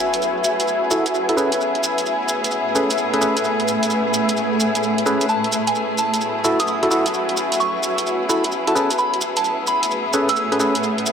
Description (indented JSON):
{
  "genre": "UK garage, two-step garage",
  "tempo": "130 BPM",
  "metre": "4/4",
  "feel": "swing 66% on 16ths",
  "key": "unclear",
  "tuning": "A4 = 440 Hz",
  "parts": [
    { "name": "rich chamber violin section", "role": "sustained chords", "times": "0.0-11.1 s", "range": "A3 to G#4", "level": "-26 LUFS", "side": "left 2 dB", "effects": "low-pass filter" },
    { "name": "granular cloud pad", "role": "texture", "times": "0.0-11.1 s", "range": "A3 to G#5", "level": "-21 LUFS", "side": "equal", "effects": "built-in reverb" },
    { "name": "electronic hi-hat", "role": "drums", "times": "0.1-11.0 s", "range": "none", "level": "-26 LUFS", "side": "right 2 dB", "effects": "none" },
    { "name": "maracas", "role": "percussion", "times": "0.1-11.1 s", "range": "none", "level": "-26 LUFS", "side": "right 2 dB", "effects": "dub echo" },
    { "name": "percussive organ stab", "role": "stabs", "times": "0.9-10.8 s", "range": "C#4 to B4", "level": "-22 LUFS", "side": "equal", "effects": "chorus, dub echo" },
    { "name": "soft synth bell", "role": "melody", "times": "5.3-10.5 s", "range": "G#5 to E6", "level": "-23 LUFS", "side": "right 1 dB", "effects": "chorus, tape echo" }
  ],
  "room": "wet spring reverb, RT60 2.1 s",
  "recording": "echo-heavy mix",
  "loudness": "-17 LUFS",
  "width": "side -7 dB against mid",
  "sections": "0.0-11.1 A section",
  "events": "filter sweep on synth stab 0.0-11.1",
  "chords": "0.0 Amaj9",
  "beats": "0.22 0.68 1.14 | 1.60 2.06 2.52 2.98 | 3.45 3.91 4.37 4.83 | 5.29 5.75 6.22 6.68 | 7.14 7.60 8.06 8.52 | 8.98 9.45 9.91 10.37 | 10.83"
}